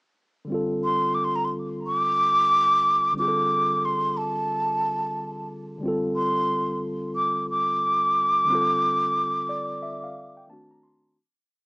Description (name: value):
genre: R&B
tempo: 90 BPM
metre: 4/4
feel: swing 62% on 16ths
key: unclear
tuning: A4 = 439 Hz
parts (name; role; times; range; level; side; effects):
- mellow tine electric piano; accompaniment; 0.4-11.2 s; D3 to C6; -29 LUFS; equal; medium stereo tremolo
- breathy concert flute; melody; 0.8-10.5 s; A5 to D6; -21 LUFS; equal; none
room: moderate studio ambience, RT60 0.5 s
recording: small speaker sound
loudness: -21 LUFS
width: side -28 dB against mid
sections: 0.5-11.2 groove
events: fade-out 8.5-11.2; tine electric piano fill 9.2-11.2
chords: 0.5 F69/D; 10.5 D7b9